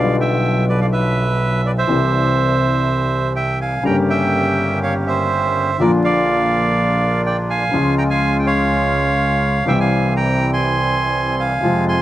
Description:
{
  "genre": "tango",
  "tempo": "123 BPM",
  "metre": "4/4",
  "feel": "rubato",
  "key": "unclear",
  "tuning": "A4 = 440 Hz",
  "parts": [
    { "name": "bandoneon", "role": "melody", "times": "0.0-12.0 s", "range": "Bb4 to C6", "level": "-19 LUFS", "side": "right 2 dB", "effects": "slapback echo" },
    { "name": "warm concert grand piano", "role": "accompaniment", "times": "0.0-12.0 s", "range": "G1 to G4", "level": "-20 LUFS", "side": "left 2 dB", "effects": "none" },
    { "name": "clear double bass", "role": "bass", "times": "0.0-12.0 s", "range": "G1 to F2", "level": "-21 LUFS", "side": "right 1 dB", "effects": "none" },
    { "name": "bandoneon", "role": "stabs", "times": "3.9-12.0 s", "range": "E3 to G4", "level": "-25 LUFS", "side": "right 2 dB", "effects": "slapback echo" }
  ],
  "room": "little or no reverb",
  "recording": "recorded outdoors, with no room sound, vinyl crackle",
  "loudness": "-15 LUFS",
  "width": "side -14 dB against mid",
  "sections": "0.0-12.0 A section",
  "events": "none",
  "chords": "0.0 G7/B; 1.9 C; 3.9 Gdim; 5.8 Bb; 7.7 Db; 9.7 C",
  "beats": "0.44 0.92 1.41 | 1.89 2.38 2.87 3.36 | 3.85 4.34 4.83 5.32 | 5.80 6.29 6.77 7.25 | 7.74 8.22 8.70 9.19 | 9.68 10.16 10.65 11.14 | 11.63"
}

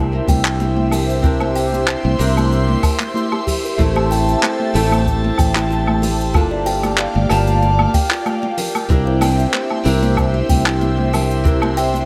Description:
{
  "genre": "sunset chillout",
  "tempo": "94 BPM",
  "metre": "4/4",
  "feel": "swing 53% on 16ths",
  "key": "unclear",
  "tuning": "A4 = 440 Hz",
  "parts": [
    { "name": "flamenco guitar", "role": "accompaniment", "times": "0.0-12.1 s", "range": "A3 to A5", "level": "-26 LUFS", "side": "equal", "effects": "digital delay" },
    { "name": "airy breathy pad", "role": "sustained chords", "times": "0.0-12.1 s", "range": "G4 to C6", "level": "-26 LUFS", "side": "equal", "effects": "chorus, phaser" },
    { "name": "fretless electric bass", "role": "bass", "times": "0.0-12.1 s", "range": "G1 to C2", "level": "-21 LUFS", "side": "equal", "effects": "lush chorus" },
    { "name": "congas", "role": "percussion", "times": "0.1-12.1 s", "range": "none", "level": "-27 LUFS", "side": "equal", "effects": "none" },
    { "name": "kalimba", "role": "arpeggios", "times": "0.3-11.9 s", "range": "E4 to G5", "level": "-25 LUFS", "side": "equal", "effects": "digital delay" },
    { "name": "electronic kick drum", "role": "drums", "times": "0.3-11.6 s", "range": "none", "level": "-19 LUFS", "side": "equal", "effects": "none" },
    { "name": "jazz brush drum kit", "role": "drums", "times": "0.3-12.1 s", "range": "cabasa, handclaps, hi-hat, woodblock", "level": "-26 LUFS", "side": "equal", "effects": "none" }
  ],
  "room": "light reverb",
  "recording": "none",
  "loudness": "-17 LUFS",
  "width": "mono",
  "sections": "0.0-12.1 A section",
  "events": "none",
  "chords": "0.0 C7; 3.8 Am7; 6.3 Gm7; 8.9 C7",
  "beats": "0.60 | 1.24 1.88 2.52 3.15 | 3.79 4.43 5.07 5.71 | 6.34 6.98 7.62 8.26 | 8.90 9.54 10.18 10.81 | 11.45"
}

